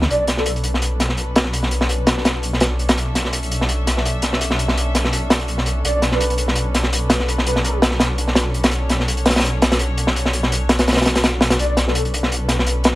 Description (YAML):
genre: drum and bass, jungle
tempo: 167 BPM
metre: 4/4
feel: swing 54% on 16ths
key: B minor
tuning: A4 = 440 Hz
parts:
  - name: warm chamber string section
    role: sustained chords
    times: 0.0-13.0 s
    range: C#4 to E5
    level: -28 LUFS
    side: left 1 dB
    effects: none
  - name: detuned saw bass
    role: bass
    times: 0.0-13.0 s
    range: B1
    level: -21 LUFS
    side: equal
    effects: none
  - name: crunchy breakbeat drum kit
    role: drums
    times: 0.0-12.9 s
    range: hi-hat, snare drum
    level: -18 LUFS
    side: equal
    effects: high-pass filter on kick, high-pass filter on hats, high-pass filter on snare, high-pass filter on room
  - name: breathy flute-like synth lead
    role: melody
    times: 0.1-0.5, 5.8-7.7, 11.6-12.0 s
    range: A4 to D5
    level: -24 LUFS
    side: right 1 dB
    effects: ensemble chorus, dub echo
room: light reverb, small room ambience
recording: vinyl crackle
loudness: -16 LUFS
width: side -17 dB against mid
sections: 0.1-13.0 A section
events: none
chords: 0.1 Bm9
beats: | 0.10 0.46 0.81 1.17 | 1.53 1.89 2.25 2.61 | 2.97 3.33 3.69 4.05 | 4.41 4.77 5.13 5.49 | 5.84 6.20 6.56 6.92 | 7.28 7.64 8.00 8.36 | 8.72 9.08 9.44 9.80 | 10.16 10.52 10.88 11.23 | 11.59 11.95 12.31 12.67